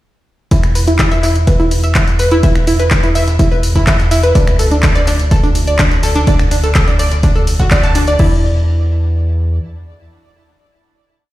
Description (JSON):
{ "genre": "progressive house", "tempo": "125 BPM", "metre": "4/4", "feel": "straight", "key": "unclear", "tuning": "A4 = 440 Hz", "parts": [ { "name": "analog pluck", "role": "arpeggios", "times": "0.5-8.4 s", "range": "D4 to A5", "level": "-16 LUFS", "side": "equal", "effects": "chorus, sidechain pumping, ping-pong delay" }, { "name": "round analog bass", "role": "bass", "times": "0.5-9.6 s", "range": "D2 to E2", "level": "-15 LUFS", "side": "equal", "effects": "sidechain pumping" }, { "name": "breakbeat sampler-style drum kit", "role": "drums", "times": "0.5-8.1 s", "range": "ride cymbal, snare drum", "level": "-29 LUFS", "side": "right 1 dB", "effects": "none" }, { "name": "electronic kick drum", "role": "drums", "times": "0.5-8.3 s", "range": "none", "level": "-13 LUFS", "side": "equal", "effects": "studio ambience" }, { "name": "house drum kit", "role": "drums", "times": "0.5-8.3 s", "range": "crash cymbal, finger snaps, handclaps, hi-hat, tambourine", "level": "-20 LUFS", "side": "equal", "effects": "high-pass filter on hats, studio ambience, high-pass filter on perc, high-pass filter on snare, high-pass filter on cymbals" } ], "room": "light reverb", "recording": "played on a big sound system in a bare room, stone room reverb", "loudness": "-10 LUFS", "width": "side -16 dB against mid", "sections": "0.5-8.2 build; 8.2-11.3 final chord", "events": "build-up 0.5-8.2", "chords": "0.5 E5; 4.4 N.C.", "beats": "| 0.51 0.99 1.47 1.95 | 2.43 2.91 3.39 3.87 | 4.35 4.83 5.31 5.79 | 6.27 6.75 7.23 7.71 | 8.19 8.67 9.15" }